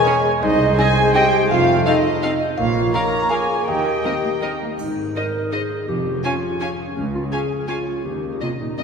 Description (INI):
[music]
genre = cinematic, playful, whimsical film cue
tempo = 166 BPM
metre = 3/4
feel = straight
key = Ab major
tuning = A4 = 440 Hz
[part]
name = xylophone with soft rubber mallets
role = melody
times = 0.0-4.6 s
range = Eb5 to Bb5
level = -25 LUFS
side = left 1 dB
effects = none
[part]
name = dark clarinet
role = second line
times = 0.0-8.8 s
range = C4 to Bb4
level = -26 LUFS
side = left 1 dB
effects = none
[part]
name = mellow cor anglais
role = second line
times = 0.0-4.6 s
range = C5 to Eb5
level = -27 LUFS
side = right 2 dB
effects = none
[part]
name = mellow flute section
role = second line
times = 0.0-4.6 s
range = Eb5 to Bb5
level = -24 LUFS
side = equal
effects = none
[part]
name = warm chamber violin section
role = second line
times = 0.0-8.8 s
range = C5 to Bb5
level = -27 LUFS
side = equal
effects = none
[part]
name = warm bassoon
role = accompaniment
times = 0.0-4.6 s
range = G#3 to Bb3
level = -25 LUFS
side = right 2 dB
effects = none
[part]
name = mellow French horn section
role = sustained chords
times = 0.0-4.6 s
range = Eb4 to Bb4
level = -24 LUFS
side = left 2 dB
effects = none
[part]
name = concert harp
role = arpeggios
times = 0.0-8.8 s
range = F2 to F6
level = -28 LUFS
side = left 2 dB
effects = none
[part]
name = warm chamber violin section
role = melody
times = 0.1-8.8 s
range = C#5 to Ab5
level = -30 LUFS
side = left 1 dB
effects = none
[part]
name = rich studio viola section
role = accompaniment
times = 0.1-8.8 s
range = Bb3 to Bb4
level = -32 LUFS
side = right 1 dB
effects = none
[part]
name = dark chamber cello section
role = bass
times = 0.4-8.8 s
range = C2 to C4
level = -28 LUFS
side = right 3 dB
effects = none
[part]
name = rich studio double bass section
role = bass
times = 0.4-8.4 s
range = F1 to Eb2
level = -30 LUFS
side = right 3 dB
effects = none
[part]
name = triangle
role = percussion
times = 4.8-5.5 s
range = none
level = -49 LUFS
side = right 2 dB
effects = none
[sound]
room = wet church reverb, RT60 2.8 s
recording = recorded in a church or concert hall, lossy compression artefacts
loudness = -17 LUFS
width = side -6 dB against mid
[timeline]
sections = 0.0-4.8 A section; 4.8-8.8 B section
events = none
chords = 0.4 Ab/C; 1.5 F7; 2.6 Bbm; 3.7 Eb; 4.8 Ab; 5.9 Db/F; 7.0 Db; 8.1 Eb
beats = 0.06 | 0.42 0.78 1.14 | 1.50 1.86 2.22 | 2.58 2.94 3.31 | 3.68 4.05 4.42 | 4.79 5.16 5.52 | 5.89 6.25 6.61 | 6.97 7.33 7.69 | 8.05 8.42 8.79